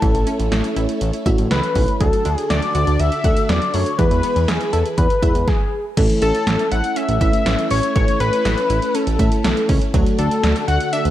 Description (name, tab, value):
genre	synth-pop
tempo	121 BPM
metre	4/4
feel	straight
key	A major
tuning	A4 = 440 Hz
part	octave-doubled lead	melody	0.0-11.0 s	G#4 to F#5	-21 LUFS	left 2 dB	chorus
part	FM electric piano with soft pad layer	accompaniment	0.0-10.5 s	G#3 to B4	-25 LUFS	equal	chorus
part	string machine, violins	sustained chords	0.0-11.1 s	D3 to B4	-26 LUFS	equal	ensemble chorus
part	wide unison pluck	arpeggios	0.0-11.1 s	E3 to F#5	-28 LUFS	right 2 dB	digital delay
part	chorused synth bass	bass	0.0-11.1 s	A1 to F#2	-20 LUFS	equal	none
part	punchy analog drum machine	drums	0.0-11.1 s	crash cymbal, hi-hat, kick drum, snare drum	-20 LUFS	equal	gated reverb
room	light reverb, digital ambience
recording	none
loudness	-15 LUFS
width	side -13 dB against mid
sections	0.0-6.0 A section; 6.0-11.1 B section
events	stop 5.5-6.0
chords	0.0 A; 2.0 D; 4.0 E; 6.0 A; 9.9 D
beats	| 0.02 0.52 1.01 1.51 | 2.01 2.50 3.00 3.49 | 3.99 4.49 4.98 5.48 | 5.97 6.47 6.96 7.46 | 7.96 8.45 8.95 9.44 | 9.94 10.44 10.93